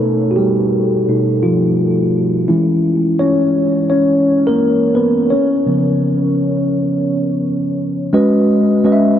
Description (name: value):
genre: R&B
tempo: 85 BPM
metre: 4/4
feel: swing 64% on 16ths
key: unclear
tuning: A4 = 441 Hz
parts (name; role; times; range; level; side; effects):
- mellow tine electric piano; solo; 0.0-9.2 s; B2 to E5; -12 LUFS; equal; lush chorus, analog delay
room: wet huge ambient reverb, RT60 9.0 s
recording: dreamy mix soaked in reverb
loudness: -12 LUFS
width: side -10 dB against mid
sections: 0.0-8.1 A section; 8.1-9.2 B section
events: tine electric piano solo 0.0-8.1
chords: 0.0 Baug7; 2.5 E6; 5.3 C#7; 8.1 C#m9